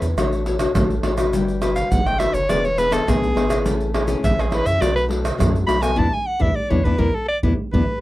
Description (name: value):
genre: samba and choro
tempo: 103 BPM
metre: 4/4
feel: straight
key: unclear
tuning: A4 = 440 Hz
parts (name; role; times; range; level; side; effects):
- nylon-string guitar; accompaniment; 0.0-7.8 s; B2 to C#5; -23 LUFS; left 4 dB; none
- round analog bass; bass; 0.0-7.8 s; E1 to F#2; -24 LUFS; equal; none
- tube shaker, surdo, pandeiro and tamborim; percussion; 0.0-7.9 s; none; -22 LUFS; right 1 dB; none
- clear soprano saxophone; melody; 1.8-8.0 s; G#4 to B5; -21 LUFS; equal; none
room: light reverb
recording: dry, close 1970s-style studio recording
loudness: -17 LUFS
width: side -16 dB against mid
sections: 0.0-8.0 A section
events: soprano saxophone solo 0.0-8.0; band accent 6.0-8.0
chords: 0.2 Dmaj7/A; 1.3 Gmaj7; 2.5 E7; 3.7 Amaj7; 4.8 Bm7; 6.0 E5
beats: 0.17 0.75 | 1.33 1.92 2.50 3.08 | 3.66 4.24 4.82 5.40 | 5.98 6.57 7.15 7.73